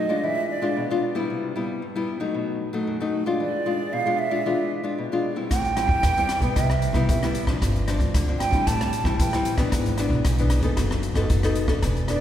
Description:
samba and choro; 114 BPM; 4/4; straight; A4 = 440 Hz
breathy mellow silver concert flute; second line; 0.0-12.2 s; D5 to A5; -27 LUFS; right 4 dB
nylon-string guitar; accompaniment; 0.0-12.2 s; F#2 to A4; -25 LUFS; left 3 dB
upright bass; bass; 5.5-12.2 s; E1 to E2; -25 LUFS; equal
open jazz drum kit; drums; 5.5-12.2 s; hi-hat, kick drum, rim click; -25 LUFS; equal
wet concert hall reverb, RT60 2.5 s; recorded in a church or concert hall; -21 LUFS; side -10 dB against mid
0.0-12.2 A section
flute solo 0.0-12.2
0.2 E7b9; 1.3 Cmaj7; 2.4 B7; 3.4 E7b9; 5.5 Am7; 6.6 Cmaj7; 7.6 G7sus4; 8.7 Am7; 9.7 E7/G#; 10.8 B7/F#

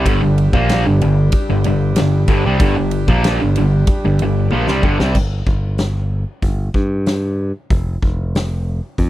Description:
classic rock; 94 BPM; 4/4; straight; A4 = 440 Hz
bright tonewheel organ; sustained chords; 0.0-5.1 s; G3 to G4; -24 LUFS; equal; slow rotary speaker, overdrive
sludgy distorted guitar; riff; 0.0-5.1 s; G2 to Bb3; -16 LUFS; right 1 dB; overdrive
modern bright picked electric bass; bass; 0.0-9.1 s; F1 to G2; -18 LUFS; equal
huge arena drum kit; drums; 0.1-9.1 s; crash cymbal, hi-hat, kick drum, ride cymbal, snare drum, toms; -19 LUFS; equal
little or no reverb; dry, close 1970s-style studio recording; -14 LUFS; side -15 dB against mid
0.0-5.2 A section; 5.2-9.1 B section
drum fill 4.5-5.2
0.0 G5; 5.2 N.C.

